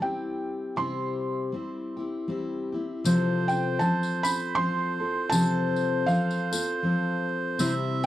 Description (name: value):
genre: acoustic folk duo or small band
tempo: 79 BPM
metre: 3/4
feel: swing 59% on 8ths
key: unclear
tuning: A4 = 440 Hz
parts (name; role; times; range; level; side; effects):
- felt-muted upright piano; melody; 0.0-8.1 s; F5 to C6; -30 LUFS; right 2 dB; none
- picked steel-string acoustic guitar; accompaniment; 0.0-8.1 s; C3 to C5; -27 LUFS; left 2 dB; none
- melodica; second line; 3.1-8.1 s; C5 to E5; -31 LUFS; right 6 dB; none
- tambourine; percussion; 3.1-8.1 s; none; -36 LUFS; left 7 dB; none
room: light reverb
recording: dry, close 1970s-style studio recording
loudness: -25 LUFS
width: side -13 dB against mid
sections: 0.0-3.1 A section; 3.1-8.1 B section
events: none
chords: 0.0 C; 3.1 F/C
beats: 0.01 | 0.77 1.54 2.30 | 3.06 3.82 4.58 | 5.33 6.09 6.85 | 7.60